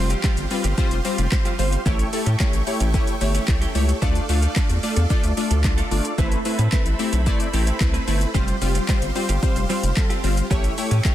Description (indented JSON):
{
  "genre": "dance-pop",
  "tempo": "111 BPM",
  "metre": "4/4",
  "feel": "straight",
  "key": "A minor",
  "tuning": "A4 = 440 Hz",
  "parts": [
    { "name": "funky polysynth comp", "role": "accompaniment", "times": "0.0-11.1 s", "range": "G3 to F5", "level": "-25 LUFS", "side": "left 2 dB", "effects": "chorus, sidechain pumping" },
    { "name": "supersaw chords", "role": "sustained chords", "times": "0.0-11.1 s", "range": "G4 to D6", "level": "-32 LUFS", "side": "right 2 dB", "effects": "sidechain pumping" },
    { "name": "round analog bass", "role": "bass", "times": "0.0-11.0 s", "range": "F1 to A2", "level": "-21 LUFS", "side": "equal", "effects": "sidechain pumping" },
    { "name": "downlifter", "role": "sound effects", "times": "0.0-1.9 s", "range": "none", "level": "-44 LUFS", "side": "right 1 dB", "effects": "none" },
    { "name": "direct-recorded clean electric guitar", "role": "riff", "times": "0.1-11.1 s", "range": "E3 to B4", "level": "-33 LUFS", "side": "right 5 dB", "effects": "lush chorus" },
    { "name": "deep house drum kit", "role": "drums", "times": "0.1-11.1 s", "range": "handclaps, hi-hat, kick drum, shaker, snare drum", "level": "-22 LUFS", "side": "equal", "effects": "overdrive" }
  ],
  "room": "digital ambience",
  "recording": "dense, heavily limited modern master",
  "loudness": "-18 LUFS",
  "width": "side -12 dB against mid",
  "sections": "0.0-11.1 A section",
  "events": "none",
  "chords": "0.0 Fsus2; 1.9 A7; 4.0 Dm; 6.2 Amadd9; 8.3 Fsus2; 10.5 A7"
}